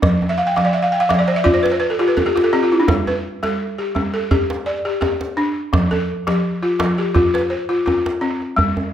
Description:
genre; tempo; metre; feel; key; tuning
west african traditional, West African string and xylophone music; 84 BPM; 4/4; swing 53% on 16ths; unclear; A4 = 444 Hz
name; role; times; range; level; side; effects
balafon; arpeggios; 0.0-8.9 s; F3 to G5; -16 LUFS; equal; none
djembe; percussion; 0.0-8.9 s; none; -21 LUFS; right 2 dB; none
room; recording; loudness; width
moderate recital hall reverb, RT60 1.5 s; none; -16 LUFS; side -10 dB against mid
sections
0.0-8.6 A section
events
balafon fill 0.3-2.9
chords
0.0 F5; 2.9 G; 5.7 F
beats
| 0.02 0.73 1.45 2.16 | 2.87 3.59 4.30 5.01 | 5.73 6.44 7.15 7.86 | 8.57

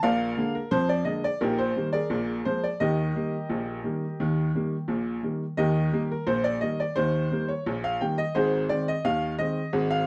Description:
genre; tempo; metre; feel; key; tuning
ragtime piano; 87 BPM; 2/4; straight; Eb major; A4 = 441 Hz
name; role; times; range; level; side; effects
clear upright piano; solo; 0.0-10.1 s; Ab1 to G5; -27 LUFS; equal; none
room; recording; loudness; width
moderate studio reverb, RT60 0.6 s; none; -27 LUFS; mono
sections
0.0-5.6 A section; 5.6-10.1 A section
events
none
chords
0.0 Bb7; 1.4 Eb/Bb; 2.1 Bb7; 2.8 Eb; 8.3 Ab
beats
| 0.04 0.72 | 1.41 2.10 | 2.80 3.50 | 4.20 4.89 | 5.59 6.28 | 6.97 7.66 | 8.35 9.04 | 9.73

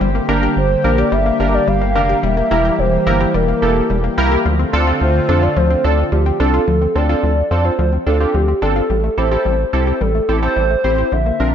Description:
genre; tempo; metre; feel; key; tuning
pop; 108 BPM; 4/4; straight; D minor; A4 = 440 Hz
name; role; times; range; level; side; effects
chorused pulse-width pad; sustained chords; 0.0-6.7 s; D3 to G4; -21 LUFS; left 1 dB; none
analog pluck; arpeggios; 0.0-11.3 s; D3 to G4; -24 LUFS; left 6 dB; chorus, ping-pong delay
rubbery square bass; bass; 0.0-11.5 s; E1 to F2; -17 LUFS; equal; none
warm analog keys; accompaniment; 0.3-11.5 s; Bb3 to C5; -20 LUFS; right 2 dB; chorus
hollow clarinet-like synth lead; melody; 0.6-11.5 s; G4 to F5; -19 LUFS; right 1 dB; chorus, ping-pong delay
room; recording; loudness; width
moderate scoring stage reverb, RT60 1.6 s; dark, warm production, nothing above 7.7 kHz; -13 LUFS; side -8 dB against mid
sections
0.0-6.7 A section; 6.7-11.5 B section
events
none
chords
0.0 Gm; 2.2 Edim; 4.5 Dm7; 8.9 Am7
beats
| 0.01 0.57 1.12 1.68 | 2.23 2.79 3.34 3.90 | 4.46 5.01 5.57 6.12 | 6.68 7.23 7.79 8.34 | 8.90 9.46 10.01 10.57 | 11.12

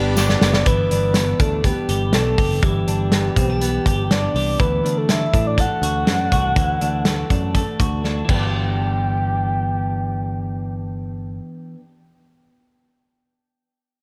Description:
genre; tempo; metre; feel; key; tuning
jangly indie pop; 122 BPM; 4/4; straight; G major; A4 = 440 Hz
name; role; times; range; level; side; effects
soft octave-layered synth lead; melody; 0.0-11.4 s; G4 to G5; -26 LUFS; equal; chorus
fingerpicked steel-string acoustic guitar; accompaniment; 0.0-1.2 s; G3 to G4; -29 LUFS; equal; none
phased string machine; sustained chords; 0.0-0.6 s; G4 to D6; -37 LUFS; equal; none
twelve-string electric guitar; arpeggios; 0.0-11.9 s; E3 to G4; -28 LUFS; equal; spring reverb
picked electric bass; bass; 0.0-11.4 s; F#1 to A2; -25 LUFS; equal; none
loose indie drum kit; drums; 0.2-8.4 s; crash cymbal, hi-hat, kick drum, snare drum; -23 LUFS; equal; none
tambourine; percussion; 0.2-0.5 s; none; -34 LUFS; equal; none
room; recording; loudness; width
light reverb; none; -19 LUFS; mono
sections
0.7-8.5 A section; 8.5-12.5 B section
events
drum fill 0.2-0.7, 8.0-8.5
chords
0.0 G; 0.7 G6; 4.6 Dadd9; 8.3 G6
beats
0.17 | 0.66 1.15 1.64 2.13 | 2.62 3.11 3.61 4.10 | 4.59 5.08 5.58 6.07 | 6.56 7.05 7.55 8.04 | 8.53 9.03 9.52 10.01 | 10.50 11.00 11.49

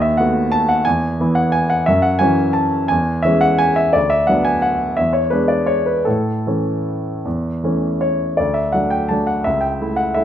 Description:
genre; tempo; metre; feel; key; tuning
classical, piano waltz; 148-187 BPM; 3/4; rubato; A major; A4 = 438 Hz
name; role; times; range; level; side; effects
warm grand piano; solo; 0.0-10.2 s; C#2 to A5; -15 LUFS; equal; none
room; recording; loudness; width
moderate large studio reverb, RT60 0.8 s; none; -15 LUFS; side -10 dB against mid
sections
0.0-8.4 A section; 8.4-10.2 B section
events
none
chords
0.0 B7/D#; 0.9 E; 1.9 F#m7; 2.9 C#m/E; 4.0 Bm/D; 5.0 E7; 6.1 A; 8.4 D; 9.5 A7/C#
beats
0.19 0.53 | 0.87 1.20 1.54 | 1.88 2.21 2.56 | 2.90 3.25 3.60 | 3.95 4.29 4.64 | 4.99 5.33 5.69 | 6.07 6.46 6.87 | 7.25 7.63 8.02 | 8.39 8.74 9.11 | 9.46 9.81 10.17

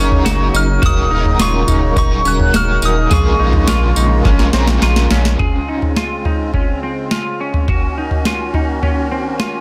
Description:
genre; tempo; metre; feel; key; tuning
dream pop; 105 BPM; 4/4; straight; Db major; A4 = 445 Hz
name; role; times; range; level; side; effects
soft synth bell; melody; 0.0-4.8 s; Db6 to Gb6; -22 LUFS; equal; chorus, phaser, tape echo, plate reverb
overdriven electric guitar; accompaniment; 0.0-5.9 s; Bb2 to Bb4; -24 LUFS; equal; tremolo, ensemble chorus, plate reverb
musette accordion; sustained chords; 0.0-9.6 s; Db3 to Gb4; -25 LUFS; equal; plate reverb
semi-hollow electric guitar; arpeggios; 0.0-9.6 s; C4 to Ab4; -24 LUFS; equal; analog chorus, tape echo, plate reverb
saturated sub bass; bass; 0.0-5.4 s; Eb1 to Bb1; -18 LUFS; equal; none
booming analog drum machine; drums; 0.1-9.5 s; kick drum, snare drum, tambourine, toms; -19 LUFS; equal; overdrive
room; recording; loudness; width
light reverb; dense, heavily limited modern master; -15 LUFS; mono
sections
0.0-5.4 A section; 5.4-9.6 B section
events
drum fill 4.3-5.4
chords
0.0 Gb6; 0.8 Ebm7; 3.1 Bbm7; 5.4 Dbmaj7; 7.7 Gb6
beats
0.26 | 0.83 1.40 1.97 2.54 | 3.11 3.68 4.25 4.83 | 5.40 5.97 6.54 7.11 | 7.68 8.26 8.83 9.40

